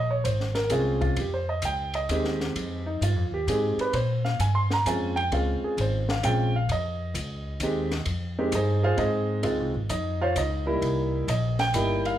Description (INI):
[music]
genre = jazz piano trio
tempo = 131 BPM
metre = 3/4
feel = swing 67% on 8ths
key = F minor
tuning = A4 = 444 Hz
[part]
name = warm grand piano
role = melody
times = 0.0-12.2 s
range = G3 to C6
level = -26 LUFS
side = right 1 dB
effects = none
[part]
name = upright bass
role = bass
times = 0.0-12.2 s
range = G1 to Bb2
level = -27 LUFS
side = equal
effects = none
[part]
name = compact cocktail drum kit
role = drums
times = 0.2-12.1 s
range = hi-hat, kick drum, ride cymbal, snare drum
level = -35 LUFS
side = left 2 dB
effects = none
[sound]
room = moderate large studio reverb, RT60 0.8 s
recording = band playing live in one room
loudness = -24 LUFS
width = side -12 dB against mid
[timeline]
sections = 0.0-12.2 A section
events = grand piano solo 0.0-12.2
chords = 0.0 Bbm9; 1.2 Fm9; 3.9 Bbm9; 6.7 Fm9; 9.4 Dbmaj7; 10.8 C7#9